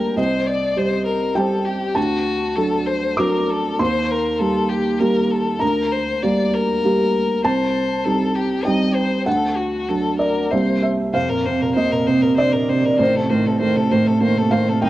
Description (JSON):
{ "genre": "neoclassical piano and strings", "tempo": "99 BPM", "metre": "3/4", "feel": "rubato", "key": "unclear", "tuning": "A4 = 440 Hz", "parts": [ { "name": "rich violin", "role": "melody", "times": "0.0-14.9 s", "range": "Eb4 to Eb5", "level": "-22 LUFS", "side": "left 4 dB", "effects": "none" }, { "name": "felt-muted upright piano", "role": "accompaniment", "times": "0.0-14.9 s", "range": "A1 to D6", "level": "-18 LUFS", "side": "right 2 dB", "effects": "none" }, { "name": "clear cello", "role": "second line", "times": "11.1-14.9 s", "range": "Bb2 to Eb3", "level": "-25 LUFS", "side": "right 2 dB", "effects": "none" } ], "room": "moderate spring reverb, RT60 2.2 s", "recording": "worn, warbling old tape, cassette tape, warbly pitch drift", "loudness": "-17 LUFS", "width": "side -15 dB against mid", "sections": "0.0-11.2 A section; 11.2-14.9 B section", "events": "none", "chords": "0.2 Cm; 2.0 D; 3.8 Eb; 5.6 Gm/D; 7.4 Cm; 9.3 D; 10.5 C7; 11.2 Fsus4; 13.0 Adim", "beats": "| 0.18 0.77 1.37 | 1.97 2.57 3.19 | 3.80 4.40 5.00 | 5.62 6.23 6.83 | 7.44 8.04 8.65 | 9.26 9.88 10.52 | 11.15 11.77 12.39 | 13.00 13.61 14.22 | 14.82" }